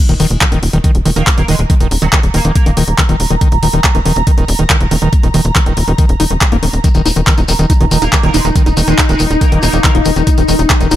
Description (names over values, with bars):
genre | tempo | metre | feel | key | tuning
psychedelic trance | 140 BPM | 4/4 | straight | unclear | A4 = 440 Hz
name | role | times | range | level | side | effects
overdriven acid bass | riff | 0.1-10.9 s | Eb3 to Eb4 | -17 LUFS | moving between left 7 dB and right 6 dB | distortion, auto-pan, sidechain pumping, digital delay
tight sequencer bass | bass | 0.1-11.0 s | Eb1 | -14 LUFS | equal | none
drum and bass drum kit | drums | 0.1-11.0 s | handclaps, hi-hat | -17 LUFS | equal | overdrive
electronic kick drum | drums | 0.4-10.8 s | none | -12 LUFS | equal | overdrive
ethereal airy pad | texture | 1.7-11.0 s | Bb5 | -24 LUFS | right 6 dB | ensemble chorus, built-in reverb, phaser, sidechain pumping
metallic wobble bass | second line | 1.2-2.8, 8.0-10.0 s | Gb3 to Bb3 | -24 LUFS | right 2 dB | ensemble chorus, sidechain pumping, high-pass filter, digital delay
swarming drone | sustained chords | 7.9-11.0 s | Eb4 | -18 LUFS | left 3 dB | built-in reverb, sidechain pumping
shekere | percussion | 6.8-11.0 s | none | -23 LUFS | left 4 dB | none
room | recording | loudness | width
little or no reverb | none | -9 LUFS | side -13 dB against mid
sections
0.0-11.0 A section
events
none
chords
0.0 Eb5